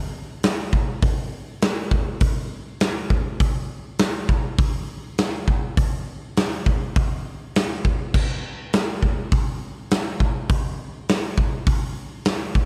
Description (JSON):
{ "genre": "rock", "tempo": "102 BPM", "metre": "4/4", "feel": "straight", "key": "none", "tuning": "none", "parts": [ { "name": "huge arena drum kit", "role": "drums", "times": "0.4-12.7 s", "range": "crash cymbal, hi-hat, kick drum, snare drum", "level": "-23 LUFS", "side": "equal", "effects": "none" } ], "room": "light reverb", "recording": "dark, warm production", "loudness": "-23 LUFS", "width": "mono", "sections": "0.0-12.7 A section", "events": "none", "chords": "none" }